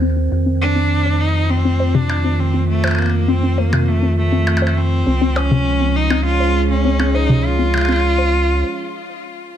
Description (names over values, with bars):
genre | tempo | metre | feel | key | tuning
IDM | 101 BPM | 4/4 | straight | unclear | A4 = 441 Hz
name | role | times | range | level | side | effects
warbly tape-like pad | sustained chords | 0.0-8.6 s | Eb3 to Db5 | -23 LUFS | right 2 dB | chorus, built-in reverb
warbly dusty pluck | arpeggios | 0.0-8.3 s | C3 to C5 | -21 LUFS | left 2 dB | chorus, ping-pong delay
rubbery square bass | bass | 0.0-8.6 s | Db2 to F2 | -18 LUFS | equal | none
rich cello | melody | 0.6-9.2 s | A3 to F4 | -20 LUFS | equal | ping-pong delay
percussion blips | drums | 2.1-8.0 s | none | -23 LUFS | left 1 dB | overdrive
room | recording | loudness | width
light reverb, digital ambience | none | -14 LUFS | side -10 dB against mid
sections
0.0-9.6 A section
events
filter sweep on ambient pad 0.0-9.6; filter sweep on synth arpeggio sound 0.0-9.6; break 8.6-9.6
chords
0.3 F7; 5.1 Db